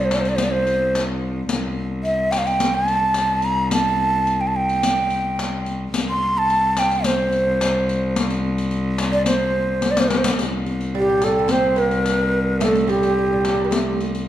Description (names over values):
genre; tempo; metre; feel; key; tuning
Arabic maqam ensemble; 108 BPM; 4/4; straight; C maqam rast; A4 = 440 Hz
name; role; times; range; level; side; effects
breathy ney; melody; 0.0-14.0 s; G4 to C6; -20 LUFS; right 1 dB; none
clear cello; drone; 0.0-14.3 s; C2; -23 LUFS; left 1 dB; none
riq; percussion; 0.1-14.2 s; none; -25 LUFS; left 4 dB; none
oud; second line; 10.9-14.0 s; G3 to C4; -24 LUFS; right 6 dB; none
room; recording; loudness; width
wet recital hall reverb, RT60 1.3 s; dark, warm production; -17 LUFS; side -12 dB against mid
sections
0.0-10.4 A section; 10.4-14.3 B section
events
drum fill 9.8-10.4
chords
none